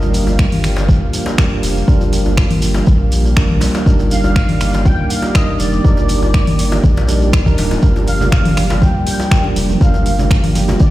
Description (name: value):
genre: afro house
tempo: 121 BPM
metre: 4/4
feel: straight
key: G minor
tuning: A4 = 439 Hz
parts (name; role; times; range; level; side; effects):
- warm analog pad; sustained chords; 0.0-10.9 s; Eb3 to F5; -23 LUFS; right 1 dB; chorus, vintage 12-bit sampler grit, sidechain pumping
- tine electric piano; stabs; 0.0-10.9 s; G3 to Bb4; -21 LUFS; right 2 dB; overdrive, fast stereo tremolo, sidechain pumping, dub echo
- round analog bass; bass; 0.0-10.9 s; D1 to C2; -17 LUFS; equal; sidechain pumping
- djembe; percussion; 0.0-10.8 s; none; -26 LUFS; left 2 dB; none
- shekere; percussion; 0.0-10.9 s; none; -31 LUFS; right 2 dB; none
- afro-pop drum kit; drums; 0.1-10.9 s; finger snaps, hi-hat, toms; -22 LUFS; left 1 dB; none
- electronic kick drum; drums; 0.4-10.9 s; none; -13 LUFS; equal; none
- expressive synth lead; melody; 4.1-10.9 s; D5 to G5; -24 LUFS; equal; ensemble chorus, digital delay
- congas; percussion; 8.0-10.8 s; none; -23 LUFS; right 3 dB; none
room: digital ambience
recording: played on a big sound system in a bare room, large studio reverb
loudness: -11 LUFS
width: side -16 dB against mid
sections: 0.0-10.9 A section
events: none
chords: 0.0 Gm7; 3.9 Ebmaj7; 7.8 Gm7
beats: 0.39 0.89 1.38 | 1.88 2.37 2.87 3.37 | 3.86 4.36 4.85 5.35 | 5.85 6.34 6.84 7.33 | 7.83 8.32 8.82 9.32 | 9.81 10.31 10.80